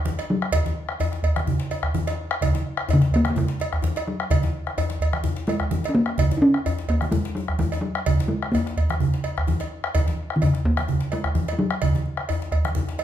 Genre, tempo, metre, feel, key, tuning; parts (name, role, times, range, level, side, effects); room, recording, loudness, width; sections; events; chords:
west african traditional, West African drum ensemble; 128 BPM; 4/4; swing 54% on 16ths; F# major pentatonic; A4 = 440 Hz
talking drum; melody; 0.0-13.0 s; C#3 to D#4; -22 LUFS; left 1 dB
bombo; percussion; 0.1-13.0 s; -25 LUFS; equal
congas; percussion; 0.1-13.0 s; -28 LUFS; right 4 dB
djembe; percussion; 0.1-13.0 s; -28 LUFS; left 3 dB
cowbell; percussion; 0.2-13.0 s; -30 LUFS; right 4 dB
wet large studio reverb, RT60 0.8 s; band playing live in one room; -21 LUFS; side -11 dB against mid
0.0-13.0 A section